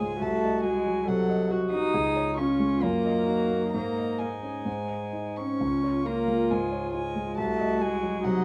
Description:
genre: quick classical-period movement for piano quartet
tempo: 122-140 BPM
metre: 4/4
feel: rubato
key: Db major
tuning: A4 = 440 Hz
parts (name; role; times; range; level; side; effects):
- warm violin; melody; 0.0-8.4 s; Gb5 to Eb6; -38 LUFS; equal; none
- rich cello; second line; 0.0-8.4 s; Gb3 to Eb4; -30 LUFS; equal; none
- dark viola; accompaniment; 0.0-8.4 s; Eb4 to A4; -34 LUFS; equal; none
- warm concert grand piano; accompaniment; 0.0-8.4 s; C2 to Eb5; -33 LUFS; equal; none
room: moderate large studio reverb, RT60 0.9 s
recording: none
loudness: -27 LUFS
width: mono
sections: 0.0-8.4 A section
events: none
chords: 0.2 Cdim7; 2.0 Db; 2.8 Ebm/Gb; 3.7 Absus4; 4.7 Ab; 5.6 Db; 7.4 Cdim7

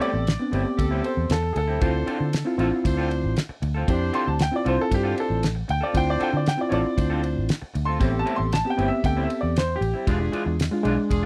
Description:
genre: straight-eighth soul blues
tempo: 116 BPM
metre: 4/4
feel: straight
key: A minor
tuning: A4 = 440 Hz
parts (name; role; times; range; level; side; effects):
- clear upright piano; second line; 0.0-10.2 s; G4 to C6; -30 LUFS; equal; none
- reed electric piano; accompaniment; 0.0-11.3 s; G#3 to G#4; -29 LUFS; equal; none
- clear horn section; sustained chords; 0.0-11.3 s; D4 to C5; -35 LUFS; equal; none
- electric guitar through a small old amp; stabs; 0.0-11.3 s; A2 to A4; -34 LUFS; equal; none
- damped 70s drum kit; drums; 0.0-11.2 s; kick drum, ride cymbal, snare drum; -27 LUFS; equal; none
- vintage muted fingered electric bass; bass; 0.1-11.3 s; E1 to D3; -28 LUFS; equal; none
room: little or no reverb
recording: dry, close 1970s-style studio recording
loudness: -24 LUFS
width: mono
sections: 0.0-11.3 A section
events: upright piano solo 0.0-11.3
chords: 0.0 Am7; 1.8 Dm7; 8.0 Am7; 10.1 E7b9

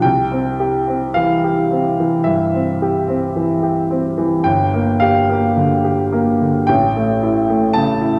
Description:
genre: classical, romantic nocturne for solo piano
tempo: 54 BPM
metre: 4/4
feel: rubato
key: unclear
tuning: A4 = 441 Hz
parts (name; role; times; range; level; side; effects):
- clear upright piano; solo; 0.0-8.2 s; G1 to A5; -16 LUFS; equal; none
room: wet recital hall reverb, RT60 1.4 s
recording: heard from further back in the room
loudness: -17 LUFS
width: mono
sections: 0.0-8.2 A section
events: none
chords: 0.0 C; 4.5 Gm; 6.7 A

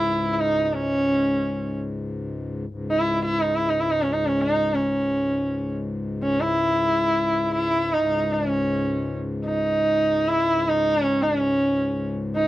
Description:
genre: indian classical, Hindustani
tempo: free time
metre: none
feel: none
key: unclear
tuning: A4 = 440 Hz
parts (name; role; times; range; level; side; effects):
- dark sarangi; melody; 0.0-12.5 s; C#4 to E4+27c; -21 LUFS; equal; none
- hand-pumped harmonium; drone; 0.0-12.5 s; C#2 to G#2; -29 LUFS; left 2 dB; none
room: moderate studio reverb, RT60 0.5 s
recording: dark, warm production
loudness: -21 LUFS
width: side -15 dB against mid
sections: 0.0-2.7 A section; 2.7-12.5 A section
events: none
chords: none

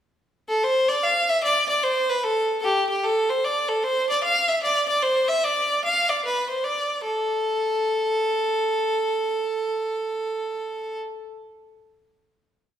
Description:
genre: celtic folk, Celtic hornpipe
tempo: 150 BPM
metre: 4/4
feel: swing 64% on 8ths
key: unclear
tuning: A4 = 440 Hz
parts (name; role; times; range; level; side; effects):
- clear fiddle; solo; 0.5-11.0 s; G4 to F5; -21 LUFS; equal; none
room: moderate recital hall reverb, RT60 1.4 s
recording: recorded in a church or concert hall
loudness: -21 LUFS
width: side -10 dB against mid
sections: 0.0-0.6 pickup bar; 0.6-7.0 A section; 7.0-10.2 final note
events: none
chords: none

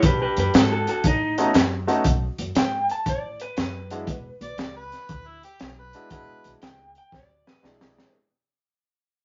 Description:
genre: electric blues shuffle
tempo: 118 BPM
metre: 4/4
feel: swing 66% on 8ths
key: E mixolydian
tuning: A4 = 440 Hz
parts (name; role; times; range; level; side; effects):
- electric guitar through a small old amp; melody; 0.0-8.1 s; D#4 to A5; -27 LUFS; equal; none
- upright bass; bass; 0.0-7.9 s; E1 to A2; -32 LUFS; equal; none
- crunchy breakbeat drum kit; drums; 0.0-8.1 s; hi-hat, kick drum, snare drum; -24 LUFS; equal; none
- clear upright piano; accompaniment; 1.4-8.1 s; G#3 to G#4; -27 LUFS; equal; none
- clear harmonica; second line; 4.4-6.5 s; E4 to D5; -45 LUFS; equal; overdrive
room: moderate studio reverb, RT60 0.6 s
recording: nothing above 7.5 kHz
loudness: -23 LUFS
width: mono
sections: 0.0-8.1 A section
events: fade-out 0.0-8.1; drum fill 7.1-8.1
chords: 0.0 B7(no3); 4.1 E7

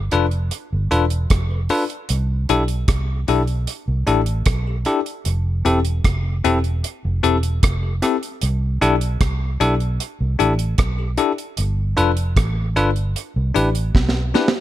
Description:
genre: lovers rock reggae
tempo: 76 BPM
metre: 4/4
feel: straight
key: C major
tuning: A4 = 440 Hz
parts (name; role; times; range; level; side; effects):
- vintage muted fingered electric bass; bass; 0.0-14.3 s; E1 to C2; -20 LUFS; right 1 dB; none
- bell-like tine electric piano; accompaniment; 0.1-14.5 s; C4 to B4; -20 LUFS; left 4 dB; medium stereo tremolo
- deep reggae drum kit; drums; 0.1-14.6 s; hi-hat, kick drum, rim click, snare drum; -21 LUFS; right 1 dB; gated reverb, dub echo
room: small room ambience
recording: none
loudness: -17 LUFS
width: side -13 dB against mid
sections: 0.0-14.6 A section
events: drum fill 13.9-14.6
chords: 0.0 G7; 2.1 C69; 5.3 Fmaj7; 8.4 C69; 11.6 G7; 13.2 Cmaj7

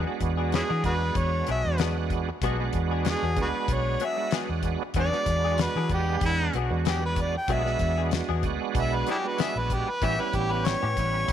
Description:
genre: straight-eighth soul blues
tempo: 95 BPM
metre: 4/4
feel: straight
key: E mixolydian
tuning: A4 = 436 Hz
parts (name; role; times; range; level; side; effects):
- bright tonewheel organ; accompaniment; 0.0-11.3 s; G3 to F#5; -31 LUFS; right 12 dB; slow rotary speaker, overdrive, chorus vibrato
- clear horn section; sustained chords; 0.0-11.1 s; G#3 to G4; -40 LUFS; equal; none
- direct-recorded clean electric guitar; stabs; 0.0-11.2 s; E3 to G#4; -35 LUFS; left 11 dB; ensemble chorus
- vintage muted fingered electric bass; bass; 0.0-11.3 s; A1 to E3; -28 LUFS; equal; none
- damped 70s drum kit; drums; 0.2-11.3 s; hi-hat, kick drum, snare drum; -30 LUFS; left 3 dB; none
- warm harmonica; melody; 0.5-11.3 s; C#4 to G5; -29 LUFS; equal; overdrive
room: light reverb, studio reverb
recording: 1960s-style stereo with parts hard left and right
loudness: -24 LUFS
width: side -10 dB against mid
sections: 0.0-11.3 A section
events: harmonica solo 0.0-11.3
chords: 0.0 E9; 10.0 A9

